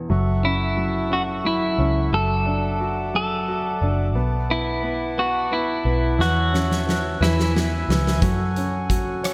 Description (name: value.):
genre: six-eight pop ballad.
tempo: 59 BPM (dotted quarters).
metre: 6/8.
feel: straight.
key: unclear.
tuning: A4 = 439 Hz.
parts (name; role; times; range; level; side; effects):
warm grand piano; accompaniment; 0.0-9.3 s; E2 to C#5; -29 LUFS; equal; lush chorus.
mellow accordion; sustained chords; 0.1-9.3 s; A4 to E6; -32 LUFS; equal; none.
vintage muted fingered electric bass; bass; 0.1-9.3 s; F#1 to F#2; -26 LUFS; equal; none.
clean electric guitar; melody; 0.4-7.9 s; E4 to A4; -26 LUFS; equal; lush chorus.
huge arena drum kit; drums; 6.2-9.3 s; hi-hat, kick drum, rim click, snare drum; -26 LUFS; equal; gated reverb.
room: moderate lush hall reverb, RT60 2.4 s.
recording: bright 1980s-style digital production.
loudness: -22 LUFS.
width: mono.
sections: 0.1-9.3 A section.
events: drum fill 6.2-8.2.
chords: 0.1 F#m7; 2.1 Dadd9/F#; 4.2 Bm7; 6.2 A/E; 7.2 E; 8.2 F#madd9.